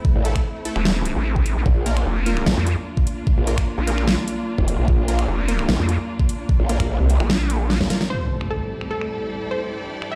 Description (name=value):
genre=heavy wobble dubstep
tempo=149 BPM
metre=4/4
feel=half-time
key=A phrygian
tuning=A4 = 436 Hz
part: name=warm symphonic string section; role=sustained chords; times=0.0-10.2 s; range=G2 to A4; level=-32 LUFS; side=equal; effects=sidechain pumping, low-pass filter
part: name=electronic kick drum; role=drums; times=0.0-7.9 s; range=none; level=-22 LUFS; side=equal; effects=overdrive, studio reverb
part: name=supersaw stab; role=stabs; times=0.2-8.0 s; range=A3 to Bb4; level=-32 LUFS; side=equal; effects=digital delay
part: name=growl bass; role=bass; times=0.2-7.9 s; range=F1 to C2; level=-22 LUFS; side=equal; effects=chorus, overdrive
part: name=dubstep drum kit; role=drums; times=0.2-10.1 s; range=finger snaps, hi-hat, snare drum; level=-27 LUFS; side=equal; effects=low-pass filter on cymbals, studio reverb, low-pass filter on hats, low-pass filter on snare
part: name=vowel-sweep wobble bass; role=bass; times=0.8-7.8 s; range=E1 to F2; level=-23 LUFS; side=equal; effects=chorus, overdrive
part: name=unison pluck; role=melody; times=8.1-10.2 s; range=A4 to E5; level=-31 LUFS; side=equal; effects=digital delay
part: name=impact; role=sound effects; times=8.1-9.7 s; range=none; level=-32 LUFS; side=equal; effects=none
part: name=warm symphonic string section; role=texture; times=8.1-10.2 s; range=E4 to G5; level=-35 LUFS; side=equal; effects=sidechain pumping
room=light reverb, digital ambience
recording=played on a big sound system in a bare room, stone room reverb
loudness=-21 LUFS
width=mono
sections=0.0-8.1 A section; 8.1-10.2 B section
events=drop 0.0-8.1; drum fill 7.7-8.1; impact 8.1-9.7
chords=0.0 Am; 1.7 Bb; 8.1 Am7